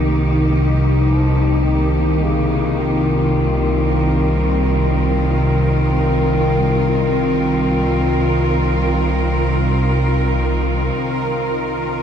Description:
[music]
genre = dark ambient drone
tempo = free time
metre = none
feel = none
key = unclear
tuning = A4 = 440 Hz
[part]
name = rich studio cello section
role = sustained chords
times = 0.0-12.0 s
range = Eb3 to Bb4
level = -20 LUFS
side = equal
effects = none
[part]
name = analog drone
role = drone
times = 0.0-12.0 s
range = C2 to Eb3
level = -17 LUFS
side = equal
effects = chorus
[part]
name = warm bass clarinet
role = melody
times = 1.1-9.7 s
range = Db3 to F3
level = -22 LUFS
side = equal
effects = tape echo
[part]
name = bubbling stepped-filter texture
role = texture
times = 11.0-12.0 s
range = Bb4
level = -24 LUFS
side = right 4 dB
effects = chorus, built-in reverb
[sound]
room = wet huge ambient reverb, RT60 8.7 s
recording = dark, warm production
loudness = -14 LUFS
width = side -8 dB against mid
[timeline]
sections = 0.0-11.0 A section; 11.0-12.0 A section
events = fade-in on bass clarinet 0.0-11.0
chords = 0.0 Eb69/C

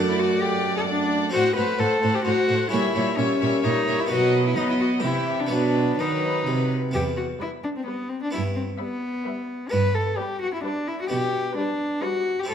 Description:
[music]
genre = classical, baroque-style concerto movement with solo episodes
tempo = 130 BPM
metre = 3/4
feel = straight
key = E minor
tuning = A4 = 441 Hz
[part]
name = dark chamber violin section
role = melody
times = 0.0-12.5 s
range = B4 to F#5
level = -34 LUFS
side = left 2 dB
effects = none
[part]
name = warm chamber violin section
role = second line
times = 0.0-12.5 s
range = G4 to D5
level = -30 LUFS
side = left 4 dB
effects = none
[part]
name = dark chamber viola section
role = accompaniment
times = 0.0-12.5 s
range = E3 to A3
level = -31 LUFS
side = left 1 dB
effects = none
[part]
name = harpsichord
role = accompaniment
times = 0.0-12.5 s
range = E2 to F#4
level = -30 LUFS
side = right 2 dB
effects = none
[part]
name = dark chamber cello section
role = bass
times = 0.0-12.5 s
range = E2 to B3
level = -26 LUFS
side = right 3 dB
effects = none
[part]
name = rich cello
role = melody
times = 0.1-12.5 s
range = B3 to B4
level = -25 LUFS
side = left 2 dB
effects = none
[sound]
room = wet recital hall reverb, RT60 1.3 s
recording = none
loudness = -21 LUFS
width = side -8 dB against mid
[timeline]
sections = 0.0-6.9 A section; 6.9-12.5 A section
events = none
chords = 0.0 D/F#; 1.3 F#dim/A; 2.7 A#dim7; 4.1 B; 5.0 C; 5.5 B; 6.9 Em; 8.3 Em/G; 9.7 G; 11.1 G/B

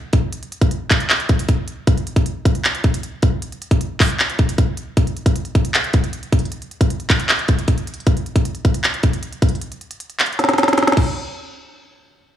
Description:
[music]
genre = hip hop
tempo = 155 BPM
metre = 4/4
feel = half-time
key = none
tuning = none
[part]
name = organic electronic drum kit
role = drums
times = 0.1-11.1 s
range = crash cymbal, handclaps, hi-hat, kick drum, snare drum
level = -16 LUFS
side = equal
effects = none
[sound]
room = little or no reverb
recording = dry, gritty hardware recording, transformer saturation, small room reverb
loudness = -16 LUFS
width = side -10 dB against mid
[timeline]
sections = 0.0-5.0 A section; 5.0-11.2 B section; 11.2-12.4 C section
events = drum fill 10.4-11.2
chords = none

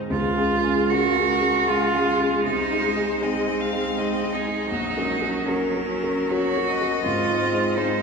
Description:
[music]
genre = classical, slow romantic movement for piano quartet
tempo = 78 BPM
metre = 3/4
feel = uneven beats, rubato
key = Db major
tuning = A4 = 440 Hz
[part]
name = dark grand piano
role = accompaniment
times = 0.0-8.0 s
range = Bb1 to Ab5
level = -25 LUFS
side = left 1 dB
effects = none
[part]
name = rich viola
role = accompaniment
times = 0.0-8.0 s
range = Gb3 to Eb4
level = -30 LUFS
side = equal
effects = none
[part]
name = rich cello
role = second line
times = 0.1-8.0 s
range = C4 to Gb4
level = -23 LUFS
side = right 4 dB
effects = none
[part]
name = clear violin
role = melody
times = 0.9-8.0 s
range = Gb4 to F5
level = -31 LUFS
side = left 6 dB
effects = none
[sound]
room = wet church reverb, RT60 3.1 s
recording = recorded in a church or concert hall, nothing above 10.9 kHz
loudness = -20 LUFS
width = side -5 dB against mid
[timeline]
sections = 0.1-8.0 A section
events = none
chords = 0.1 Db; 2.5 Ab/C; 4.7 Gb/Bb; 7.0 Ab

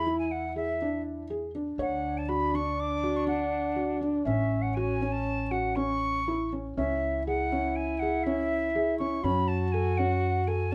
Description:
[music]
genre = contemporary instrumental, chamber music in an uneven meter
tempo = 122 BPM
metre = 5/4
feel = straight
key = unclear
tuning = A4 = 439 Hz
[part]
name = silver concert flute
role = melody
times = 0.0-10.7 s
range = E5 to D6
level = -34 LUFS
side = equal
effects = none
[part]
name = warm French horn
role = second line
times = 0.0-10.7 s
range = C#4 to F#4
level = -35 LUFS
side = equal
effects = none
[part]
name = upright bass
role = bass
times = 0.0-10.7 s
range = A1 to F#2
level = -36 LUFS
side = equal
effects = none
[part]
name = felt-muted upright piano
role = arpeggios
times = 0.1-10.7 s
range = C#4 to C#5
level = -35 LUFS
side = equal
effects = none
[sound]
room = light reverb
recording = close, detailed microphones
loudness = -29 LUFS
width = mono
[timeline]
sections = 0.0-6.8 A section; 6.8-10.7 B section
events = none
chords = 0.0 E7; 1.8 Dmaj7; 4.3 A6; 6.8 C#m; 9.2 F#m

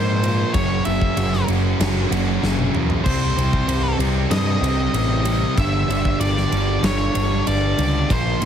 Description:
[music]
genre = quiet-loud alternative rock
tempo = 95 BPM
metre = 4/4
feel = straight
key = unclear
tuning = A4 = 439 Hz
[part]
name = octave-fuzz lead guitar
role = melody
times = 0.0-8.5 s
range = C5 to E5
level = -25 LUFS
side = left 1 dB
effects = distortion
[part]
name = fuzz guitar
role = riff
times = 0.0-8.5 s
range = F#2 to C4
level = -27 LUFS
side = left 13 dB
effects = distortion
[part]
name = overdriven semi-hollow guitar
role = riff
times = 0.0-8.5 s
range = F#2 to C4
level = -24 LUFS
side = right 10 dB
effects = none
[part]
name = scooped high-gain guitar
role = riff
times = 0.0-8.5 s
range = F#2 to Eb4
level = -29 LUFS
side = left 1 dB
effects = distortion
[part]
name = growling picked electric bass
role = bass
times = 0.0-8.5 s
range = F#1 to G#2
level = -22 LUFS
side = left 1 dB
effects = overdrive
[part]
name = huge arena drum kit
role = drums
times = 0.2-8.5 s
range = crash cymbal, kick drum, ride cymbal, snare drum, toms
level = -25 LUFS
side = equal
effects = none
[sound]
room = studio reverb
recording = heavily compressed radio sound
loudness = -17 LUFS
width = side -8 dB against mid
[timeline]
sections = 0.0-8.5 A section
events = drum fill 2.4-3.1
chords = 0.0 A#m; 0.5 F#; 3.1 Cm; 5.6 Gm

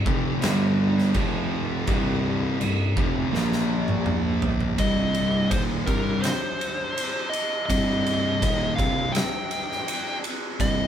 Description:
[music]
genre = stoner and doom metal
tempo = 83 BPM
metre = 4/4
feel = straight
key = C minor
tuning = A4 = 441 Hz
[part]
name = crunchy overdriven guitar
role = riff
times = 0.0-4.8 s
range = C2 to Bb3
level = -32 LUFS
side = equal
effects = none
[part]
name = mellow tuba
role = bass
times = 0.0-10.9 s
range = Eb1 to C2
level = -31 LUFS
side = equal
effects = overdrive
[part]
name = thick fuzz guitar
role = riff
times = 0.1-10.9 s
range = C2 to Bb3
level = -27 LUFS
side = left 5 dB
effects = distortion
[part]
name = thick fuzz guitar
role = riff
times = 0.1-10.9 s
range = C2 to Bb3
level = -28 LUFS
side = right 5 dB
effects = distortion
[part]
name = oversized low-tuned drum kit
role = drums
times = 0.1-10.8 s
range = crash cymbal, kick drum, ride cymbal, snare drum, toms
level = -27 LUFS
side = equal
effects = none
[part]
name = fuzz lead guitar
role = melody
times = 4.8-10.9 s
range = Bb4 to G5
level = -27 LUFS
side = equal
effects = distortion
[sound]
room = moderate stone room reverb, RT60 1.0 s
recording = band playing live in one room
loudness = -22 LUFS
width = side -9 dB against mid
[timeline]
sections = 0.0-4.8 A section; 4.8-10.9 B section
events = drum fill 3.3-4.8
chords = 0.4 G5; 1.2 F5; 1.9 C5; 3.3 Bb5; 4.8 Cm

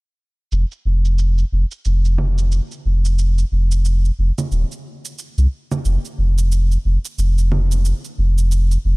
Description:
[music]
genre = organic downtempo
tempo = 90 BPM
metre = 4/4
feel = swing 59% on 16ths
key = unclear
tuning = A4 = 439 Hz
[part]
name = warm sub bass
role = bass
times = 0.5-9.0 s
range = Eb1 to C2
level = -15 LUFS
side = equal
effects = none
[part]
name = shaker and congas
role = drums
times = 0.5-8.8 s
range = none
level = -28 LUFS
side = right 3 dB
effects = low-pass filter on perc
[sound]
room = digital ambience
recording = none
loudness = -16 LUFS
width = side -28 dB against mid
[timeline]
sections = 0.5-9.0 A section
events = filter sweep on sub bass 0.5-9.0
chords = none

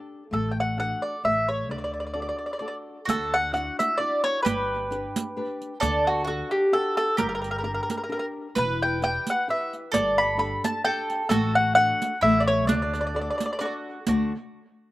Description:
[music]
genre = italian folk, Italian serenade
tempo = 131 BPM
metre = 3/4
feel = swing 55% on 8ths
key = D major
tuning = A4 = 440 Hz
[part]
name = flamenco guitar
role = accompaniment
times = 0.0-14.3 s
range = D3 to A5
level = -32 LUFS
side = left 2 dB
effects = none
[part]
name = mandolin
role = melody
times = 0.3-13.7 s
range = F#4 to B5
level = -24 LUFS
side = equal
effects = none
[part]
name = upright bass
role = bass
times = 0.3-14.3 s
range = E1 to D2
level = -32 LUFS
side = equal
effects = none
[part]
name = mandolin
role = second line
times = 3.1-14.3 s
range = D4 to B4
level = -33 LUFS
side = right 3 dB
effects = slapback echo
[part]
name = riq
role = percussion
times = 3.1-14.3 s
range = none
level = -29 LUFS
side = right 4 dB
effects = none
[sound]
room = little or no reverb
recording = recorded outdoors, with no room sound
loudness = -23 LUFS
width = side -16 dB against mid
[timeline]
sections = 0.0-3.1 A section; 3.1-14.1 A section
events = none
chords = 0.3 D/A; 1.2 A; 1.7 D; 3.1 Dadd9; 4.5 G; 5.8 D; 7.2 Gm; 8.6 Em; 9.9 Gsus2; 11.3 D/A; 12.2 A; 12.7 D

